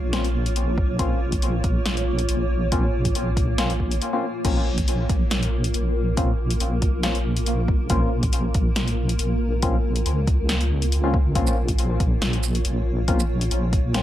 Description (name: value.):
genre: deep dubstep.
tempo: 139 BPM.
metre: 4/4.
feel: swing 54% on 16ths, half-time.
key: Bb minor.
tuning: A4 = 440 Hz.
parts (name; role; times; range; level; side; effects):
granular cloud pad; sustained chords; 0.0-14.0 s; Bb3 to Db5; -29 LUFS; right 1 dB; built-in reverb.
deep soft wobble bass; bass; 0.0-14.0 s; Bb1 to Db2; -23 LUFS; equal; chorus.
percussive organ stab; stabs; 0.1-14.0 s; Bb3 to F4; -29 LUFS; left 3 dB; lush chorus, dub echo.
deep house drum kit; drums; 0.1-14.0 s; crash cymbal, hi-hat, shaker, snare drum; -28 LUFS; equal; overdrive.
electronic kick drum; drums; 0.8-13.8 s; none; -23 LUFS; equal; overdrive.
room: digital ambience.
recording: none.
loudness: -20 LUFS.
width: side -13 dB against mid.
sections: 0.0-14.0 A section.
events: break 4.0-4.4.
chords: 0.0 Bbmadd9.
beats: 0.13 0.56 | 0.99 1.43 1.86 2.29 | 2.72 3.15 3.58 4.01 | 4.45 4.88 5.31 5.74 | 6.17 6.61 7.04 7.47 | 7.90 8.33 8.76 9.20 | 9.63 10.06 10.49 10.92 | 11.35 11.79 12.22 12.65 | 13.08 13.51 13.94.